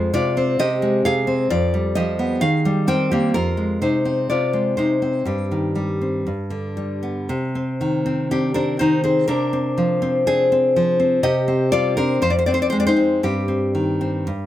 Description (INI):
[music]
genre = romantic piece for solo classical guitar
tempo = 57-66 BPM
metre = 2/4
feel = rubato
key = C minor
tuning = A4 = 440 Hz
[part]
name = nylon-string guitar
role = solo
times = 0.0-14.5 s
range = F2 to G5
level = -17 LUFS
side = equal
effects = none
[sound]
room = light reverb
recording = none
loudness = -17 LUFS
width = side -13 dB against mid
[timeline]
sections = 0.0-7.3 A section; 7.3-14.5 B section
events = none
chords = 0.0 Fm; 1.5 G7/F; 2.4 Cm/Eb; 3.3 Fm; 5.3 Cm/G; 6.3 G; 7.3 Cm; 9.3 Fm/C; 11.3 Cm; 12.2 Fm; 13.2 Cm/G